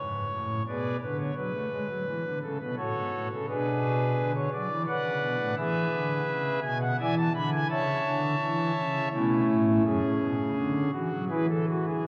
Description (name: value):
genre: classical, chorale-style piece for pipe organ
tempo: 85 BPM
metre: 3/4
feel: rubato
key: unclear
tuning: A4 = 441 Hz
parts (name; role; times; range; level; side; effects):
- pipe organ, foundations; solo; 0.0-12.0 s; F#2 to B5; -28 LUFS; equal; none
room: wet cathedral reverb, RT60 5.1 s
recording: worn, warbling old tape, cassette tape, warbly pitch drift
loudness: -28 LUFS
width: mono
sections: 0.0-12.1 A section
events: none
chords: 0.0 Fdim7 (rootless); 1.4 F#m; 3.5 G#dim/B; 5.6 E7; 7.7 A/C#; 9.8 F#m; 10.6 Dmaj9#11; 11.3 E